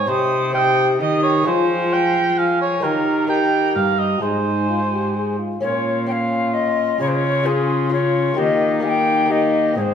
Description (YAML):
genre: classical, renaissance-style consort dance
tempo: 130 BPM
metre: 3/4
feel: straight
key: Bb dorian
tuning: A4 = 438 Hz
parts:
  - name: mellow alto recorder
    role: melody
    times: 0.0-9.9 s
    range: Ab4 to F6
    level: -23 LUFS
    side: left 4 dB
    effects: none
  - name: warm cor anglais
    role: second line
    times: 0.0-9.9 s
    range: F4 to G5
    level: -22 LUFS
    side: right 4 dB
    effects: none
  - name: clear trombone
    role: accompaniment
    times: 0.0-9.9 s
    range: Bb3 to Ab4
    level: -26 LUFS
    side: left 2 dB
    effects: none
  - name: lute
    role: accompaniment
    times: 0.0-9.9 s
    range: G2 to Db5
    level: -24 LUFS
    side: left 5 dB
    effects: none
  - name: rich cello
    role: bass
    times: 0.0-9.9 s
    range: G2 to F3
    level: -22 LUFS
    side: right 1 dB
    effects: none
room: wet stone room reverb, RT60 1.2 s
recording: heard from further back in the room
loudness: -16 LUFS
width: side -8 dB against mid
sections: 0.0-5.6 A section; 5.6-9.9 B section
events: none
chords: 0.1 Cm; 1.5 Fm; 2.8 Eb; 4.2 Ab; 5.6 Bbm; 7.0 Db; 8.4 Eb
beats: | 0.09 0.55 1.01 | 1.46 1.92 2.38 | 2.84 3.30 3.76 | 4.22 4.69 5.16 | 5.62 6.09 6.55 | 7.00 7.46 7.92 | 8.38 8.84 9.31 | 9.77